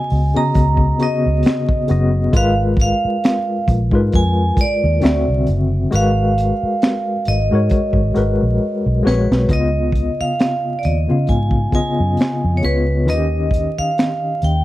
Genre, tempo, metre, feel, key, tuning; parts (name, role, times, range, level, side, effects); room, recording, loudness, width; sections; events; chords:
R&B, neo-soul; 67 BPM; 4/4; swing 56% on 16ths; G# dorian; A4 = 440 Hz
vibraphone with hard mallets; melody; 0.0-14.6 s; B4 to A#5; -21 LUFS; right 2 dB
tine electric piano; accompaniment; 0.0-14.6 s; C#3 to E#5; -20 LUFS; left 2 dB; medium tremolo
vintage muted fingered electric bass; bass; 0.1-14.6 s; F#1 to C#3; -17 LUFS; equal
crunchy breakbeat drum kit; drums; 0.1-14.6 s; finger snaps, hi-hat, kick drum, snare drum; -18 LUFS; equal
studio reverb; dry, close 1970s-style studio recording, vinyl crackle; -14 LUFS; side -16 dB against mid
0.0-9.5 A section; 9.5-14.6 B section
drum fill 8.6-9.5
0.0 C#9sus4; 2.3 G#m69; 5.0 D9; 5.9 G#m9; 9.5 C#9; 13.1 D#7